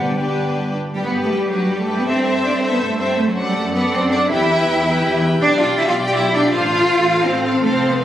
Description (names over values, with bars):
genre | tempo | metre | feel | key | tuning
quick classical-period movement for symphony orchestra | 161 BPM | 3/4 | straight | G major | A4 = 441 Hz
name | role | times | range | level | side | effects
rich studio violin section | melody | 0.0-8.0 s | B4 to G5 | -26 LUFS | left 2 dB | none
silver concert flute | second line | 0.0-0.6 s | F#5 to G5 | -27 LUFS | equal | none
warm chamber violin section | second line | 0.0-8.0 s | F#4 to G5 | -25 LUFS | left 2 dB | none
warm studio viola section | accompaniment | 0.0-8.0 s | D4 to D5 | -23 LUFS | equal | none
mellow French horn section | sustained chords | 0.0-0.7 s | G3 to B3 | -27 LUFS | left 2 dB | none
warm studio cello section | bass | 0.0-8.0 s | G2 to G4 | -18 LUFS | right 1 dB | none
warm studio double bass section | bass | 0.0-8.0 s | F1 to G2 | -25 LUFS | equal | none
room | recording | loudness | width
wet scoring stage reverb, RT60 1.6 s | recorded on a phone in the room, club ambience, compression | -15 LUFS | side -11 dB against mid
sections
0.9-8.0 A section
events
none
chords
0.0 G; 2.1 Am7/G; 3.2 D/F#; 4.3 Em; 5.4 G/B; 6.5 F/A